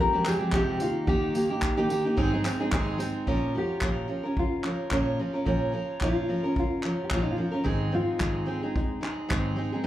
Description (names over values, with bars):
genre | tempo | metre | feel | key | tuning
acoustic pop | 109 BPM | 4/4 | swing 55% on 16ths | unclear | A4 = 438 Hz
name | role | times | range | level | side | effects
nylon-string guitar | melody | 0.0-9.9 s | C4 to Bb4 | -30 LUFS | left 1 dB | plate reverb, slapback echo
picked steel-string acoustic guitar | accompaniment | 0.0-9.9 s | F2 to Bb4 | -27 LUFS | right 1 dB | plate reverb
soft brush drum kit | drums | 0.3-9.4 s | handclaps, kick drum, tambourine | -30 LUFS | equal | none
room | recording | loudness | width
moderate club reverb, RT60 0.6 s | live gig heard through the venue's PA, club reverb | -25 LUFS | side -13 dB against mid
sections
0.0-3.3 A section; 3.3-9.9 B section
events
none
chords
0.0 Fmadd9; 0.8 Eb; 2.2 Ab; 3.3 Bbm; 7.7 Ab